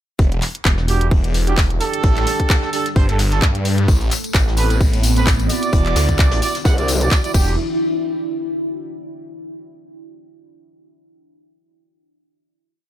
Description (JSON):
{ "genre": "bass house", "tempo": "130 BPM", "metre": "4/4", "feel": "swing 56% on 16ths", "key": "E minor", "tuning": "A4 = 440 Hz", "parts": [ { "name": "deep dark ambient pad", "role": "sustained chords", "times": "1.4-7.6 s", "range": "G3 to A4", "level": "-26 LUFS", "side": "equal", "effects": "chorus, built-in reverb, sidechain pumping" }, { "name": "phased detuned saw bass", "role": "bass", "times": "0.2-7.6 s", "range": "E1 to G2", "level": "-18 LUFS", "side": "equal", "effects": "phaser, tube saturation, sidechain pumping" }, { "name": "electronic kick drum", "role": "drums", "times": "0.2-7.4 s", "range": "none", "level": "-16 LUFS", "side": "equal", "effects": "none" }, { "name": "vintage brush drum kit", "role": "drums", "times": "0.2-7.2 s", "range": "hi-hat, snare drum", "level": "-32 LUFS", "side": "left 3 dB", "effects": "none" }, { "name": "garage drum kit", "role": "drums", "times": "0.3-7.4 s", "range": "crash cymbal, handclaps, hi-hat", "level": "-24 LUFS", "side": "equal", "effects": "none" }, { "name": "mellow horn section", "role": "stabs", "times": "0.9-7.5 s", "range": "C4 to F#5", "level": "-23 LUFS", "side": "right 4 dB", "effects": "sidechain pumping, ping-pong delay" }, { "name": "tambourine", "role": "percussion", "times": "3.9-7.6 s", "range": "none", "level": "-28 LUFS", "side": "left 6 dB", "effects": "none" }, { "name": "growl bass", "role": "bass", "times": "6.7-7.1 s", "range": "C2", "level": "-18 LUFS", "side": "equal", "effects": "chorus, sidechain pumping" } ], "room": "small room ambience", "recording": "none", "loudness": "-15 LUFS", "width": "side -11 dB against mid", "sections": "0.2-7.6 drop; 7.6-9.4 final hit", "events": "drop 0.2-7.6", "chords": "0.2 Em7; 2.0 Gsus2; 3.9 Amadd9; 5.7 Dadd9; 7.3 Em7; 7.6 N.C.", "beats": "| 0.19 0.65 1.11 1.57 | 2.04 2.50 2.96 3.42 | 3.88 4.34 4.81 5.27 | 5.73 6.19 6.65 7.11" }